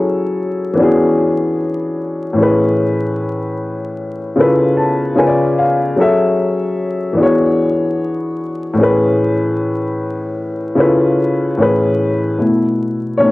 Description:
hip hop; 75 BPM; 4/4; swing 56% on 16ths; A major; A4 = 440 Hz
dark upright piano; solo; 0.0-13.3 s; A2 to A5; -13 LUFS; left 1 dB; low-pass filter
light reverb, small room ambience; home recording on cassette, vinyl crackle; -13 LUFS; side -19 dB against mid
0.0-12.4 A section
upright piano fill 4.4-6.0
0.0 F#m7; 0.8 E13; 2.4 Amaj9; 4.4 C#7alt; 5.2 C#7b9; 6.0 F#m7; 7.2 E13; 8.8 Amaj9; 10.8 C#7alt; 11.6 Amaj9; 12.4 B7sus4

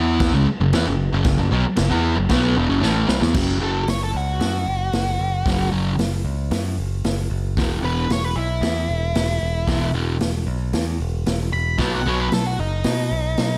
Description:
garage rock duo or trio; 114 BPM; 4/4; straight; A4 = 440 Hz
fuzz guitar; riff; 0.0-12.3 s; E2 to E4; -23 LUFS; equal; distortion
modern bright picked electric bass; bass; 0.0-13.6 s; E1 to B2; -25 LUFS; equal
vintage drum kit; drums; 0.2-13.5 s; crash cymbal, hi-hat, kick drum, snare drum; -27 LUFS; equal
octave-fuzz lead guitar; melody; 3.6-13.6 s; D#4 to B5; -28 LUFS; equal; distortion
light reverb, small room ambience; -21 LUFS; mono
0.0-3.4 A section; 3.4-13.6 B section
drum fill 2.8-3.4
0.0 F#5; 7.6 E5; 11.8 B

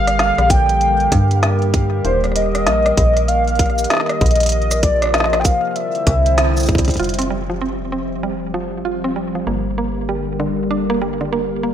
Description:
IDM; 97 BPM; 4/4; swing 62% on 16ths; A4 = 444 Hz
warm velvety synth lead; melody; 0.0-6.7 s; C5 to G5; -18 LUFS; equal; chorus, cassette tape, dub echo
warbly tape-like pad; sustained chords; 0.0-11.7 s; C3 to C5; -22 LUFS; right 1 dB; chorus, built-in reverb, vintage 12-bit sampler grit
metallic FM bass; bass; 0.0-11.7 s; Eb1 to G2; -20 LUFS; equal
organic electronic drum kit; drums; 0.1-7.2 s; cabasa, hi-hat, rim click, snare drum; -21 LUFS; equal
electronic kick drum; drums; 0.5-7.0 s; -17 LUFS; equal
mallet-like synth pluck; arpeggios; 7.0-11.7 s; D3 to F4; -22 LUFS; right 3 dB; chorus, tape echo
light reverb; rough home demo mix; -15 LUFS; side -10 dB against mid
0.0-7.0 A section; 7.0-11.7 B section
band accent 6.4-6.7; drum fill 6.7-7.0; filter sweep on ambient pad 7.0-11.7
0.0 Gm; 2.0 Eb; 4.5 Bbsus2; 5.8 Cadd9; 7.0 Fsus2; 9.5 Gm

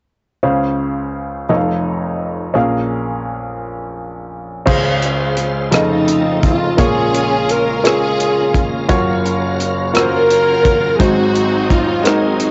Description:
slow gospel; 57 BPM (dotted quarters); 6/8; straight; Db major; A4 = 440 Hz
clear grand piano; accompaniment; 0.4-12.5 s; F1 to F5; -20 LUFS; equal
bright tonewheel organ; sustained chords; 4.7-12.5 s; Db3 to F5; -26 LUFS; equal; slow rotary speaker, chorus vibrato
dark French horn section; sustained chords; 4.7-12.5 s; Db3 to F5; -30 LUFS; equal
tight funk drum kit; drums; 4.7-12.5 s; crash cymbal, hi-hat, kick drum, rim click; -21 LUFS; equal; cassette tape
breathy alto saxophone; melody; 5.7-12.5 s; Eb4 to Bb4; -20 LUFS; equal; cassette tape
clear symphonic string section; melody; 5.8-12.5 s; Gb3 to Bb4; -21 LUFS; equal; cassette tape
light reverb, small room ambience; home recording on cassette, nothing above 7.9 kHz; -16 LUFS; mono
0.4-4.7 A section; 4.7-12.5 B section
0.4 Dbmaj7; 1.5 F7b13; 2.6 Bbm7; 4.7 Dbmaj7; 5.7 F7b13; 6.8 Bbm7; 8.9 Gbmaj7; 11.0 Ab7

